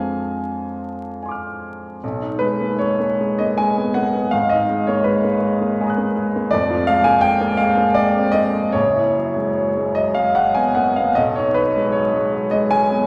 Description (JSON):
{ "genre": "classical, impressionist solo piano", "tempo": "72-84 BPM", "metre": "3/4", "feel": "rubato", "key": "unclear", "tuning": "A4 = 443 Hz", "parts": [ { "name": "clear baby grand piano", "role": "solo", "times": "0.0-13.1 s", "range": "F1 to F#6", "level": "-19 LUFS", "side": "equal", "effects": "none" } ], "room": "wet recital hall reverb, RT60 1.5 s", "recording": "vinyl crackle", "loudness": "-19 LUFS", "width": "mono", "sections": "0.0-2.0 A section; 2.0-13.1 B section", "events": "none", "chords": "0.0 Fm6; 2.0 B6; 4.3 G#m9; 6.5 Fm; 8.8 F#9sus4; 11.2 B6" }